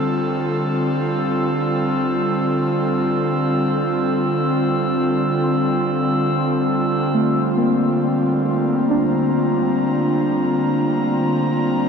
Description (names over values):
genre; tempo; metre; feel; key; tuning
ambient; free time; none; none; G dorian; A4 = 441 Hz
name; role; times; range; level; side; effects
airy breathy pad; sustained chords; 0.0-11.9 s; D3 to Bb5; -18 LUFS; equal; chorus
glass harmonica; texture; 0.0-7.2 s; E6; -28 LUFS; equal; none
muted felt-like synth keys; arpeggios; 7.1-11.9 s; A3 to D4; -21 LUFS; left 1 dB; chorus, diffuse ambient delay
bowed-like drone; drone; 11.8-11.9 s; none; barely audible; none; none
room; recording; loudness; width
wet huge ambient reverb, RT60 8.0 s; dark, warm production; -17 LUFS; side -6 dB against mid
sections
0.0-7.1 A section; 7.1-11.9 B section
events
fade-in on glass harmonica 0.0-7.1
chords
0.0 Dm11; 7.1 Gm7